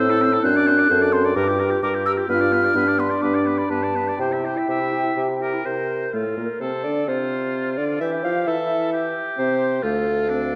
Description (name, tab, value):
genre	quick classical-period movement for wind quintet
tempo	129 BPM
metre	4/4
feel	rubato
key	F major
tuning	A4 = 440 Hz
part	mellow hollow silver concert flute	melody	0.0-10.6 s	A4 to F#6	-27 LUFS	equal	none
part	clear oboe	second line	0.0-10.6 s	D4 to E5	-31 LUFS	equal	none
part	mellow French horn	accompaniment	0.0-10.6 s	A3 to A4	-27 LUFS	equal	none
part	warm clarinet	accompaniment	0.0-10.6 s	B3 to F5	-29 LUFS	equal	none
part	mellow bassoon	bass	0.0-10.6 s	D2 to F3	-27 LUFS	equal	none
room	wet concert hall reverb, RT60 1.9 s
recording	dark, warm production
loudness	-21 LUFS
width	mono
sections	0.0-6.1 A section; 6.1-10.6 B section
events	none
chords	0.4 D7/F#; 1.4 Gm7; 2.3 G7; 4.2 C; 6.1 F/A; 8.0 C/E; 9.8 Dm